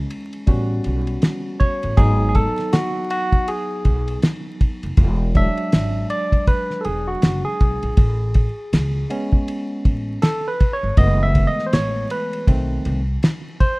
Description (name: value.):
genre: hip hop, jazz-hop.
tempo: 80 BPM.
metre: 4/4.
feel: swing 60% on 16ths.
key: E major.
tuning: A4 = 440 Hz.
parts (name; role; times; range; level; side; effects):
barky tine electric piano; accompaniment; 0.0-13.8 s; D#3 to E5; -23 LUFS; equal; medium stereo tremolo.
upright bass; bass; 0.0-13.2 s; E1 to C#2; -21 LUFS; equal; none.
cloth-damped thuddy drum kit; drums; 0.1-13.8 s; hi-hat, kick drum, ride cymbal, snare drum; -16 LUFS; equal; none.
room: small room ambience.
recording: rough home demo mix, vinyl crackle.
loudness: -17 LUFS.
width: side -25 dB against mid.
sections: 0.0-13.8 A section.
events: tine electric piano solo 0.0-13.8.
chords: 0.5 A13; 2.0 G#m7; 5.0 E9; 8.0 Amaj9; 11.0 F#m11; 12.5 B7b9.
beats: 0.48 1.23 | 1.98 2.73 3.48 4.23 | 4.98 5.73 6.48 7.23 | 7.98 8.73 9.48 10.23 | 10.98 11.73 12.48 13.23.